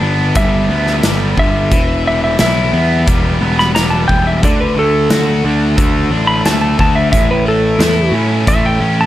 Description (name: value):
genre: classic rock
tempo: 89 BPM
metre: 4/4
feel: straight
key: E dorian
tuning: A4 = 440 Hz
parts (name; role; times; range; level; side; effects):
- distorted electric guitar; riff; 0.0-9.1 s; G2 to F#4; -17 LUFS; left 1 dB; overdrive
- fuzz picked electric bass; bass; 0.0-9.1 s; E1 to A2; -15 LUFS; equal; overdrive
- clean lap steel guitar; melody; 0.4-9.1 s; A4 to B5; -16 LUFS; equal; slapback echo
- big rock drum kit; drums; 0.4-8.6 s; hi-hat, kick drum, snare drum; -17 LUFS; equal; none
room: light reverb, small room reverb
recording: none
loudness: -11 LUFS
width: side -14 dB against mid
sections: 0.0-9.1 A section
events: electric slide guitar solo 0.0-9.1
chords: 0.0 G; 1.7 Em; 4.4 D; 7.1 A